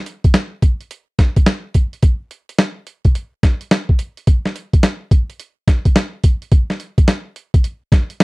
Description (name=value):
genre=R&B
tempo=107 BPM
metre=4/4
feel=swing 64% on 16ths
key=none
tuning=none
part: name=boom bap sampler-style drum kit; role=drums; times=0.1-8.2 s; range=hi-hat, kick drum, snare drum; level=-12 LUFS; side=equal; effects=none
room=light reverb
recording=dry, close 1970s-style studio recording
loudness=-15 LUFS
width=side -25 dB against mid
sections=0.0-8.2 A section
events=none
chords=none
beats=0.35 0.91 1.47 | 2.03 2.59 3.15 3.71 | 4.27 4.83 5.39 5.96 | 6.52 7.08 7.64 8.20